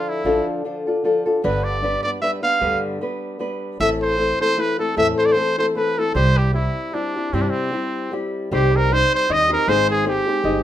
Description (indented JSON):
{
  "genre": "mexican folk, mariachi",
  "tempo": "153 BPM",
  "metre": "3/4",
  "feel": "swing 55% on 8ths",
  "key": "C major",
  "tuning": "A4 = 439 Hz",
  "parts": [
    { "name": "bright trumpet", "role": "melody", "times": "0.0-10.6 s", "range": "C4 to F5", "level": "-20 LUFS", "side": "right 1 dB", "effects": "none" },
    { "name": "nylon-string guitar", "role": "accompaniment", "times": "0.0-10.6 s", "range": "G2 to B4", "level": "-22 LUFS", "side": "left 2 dB", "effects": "none" },
    { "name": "upright bass", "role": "bass", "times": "0.2-10.6 s", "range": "G1 to G2", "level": "-22 LUFS", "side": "right 1 dB", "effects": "none" },
    { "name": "concert harp", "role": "arpeggios", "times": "8.5-10.6 s", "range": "C5 to Eb5", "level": "-25 LUFS", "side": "left 6 dB", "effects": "none" }
  ],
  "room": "wet studio reverb, RT60 0.6 s",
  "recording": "minimal, uncompressed stereo recording",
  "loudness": "-18 LUFS",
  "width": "side -11 dB against mid",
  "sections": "0.0-8.5 A section; 8.5-10.6 B section",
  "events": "none",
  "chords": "0.0 Dm; 1.4 G; 3.8 Am; 6.2 C; 8.5 Cm; 9.7 Ab",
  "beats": "| 0.24 0.64 1.04 | 1.43 1.82 2.21 | 2.61 3.00 3.40 | 3.80 4.19 4.59 | 4.98 5.37 5.76 | 6.15 6.54 6.94 | 7.33 7.73 8.13 | 8.52 8.91 9.30 | 9.68 10.06 10.45"
}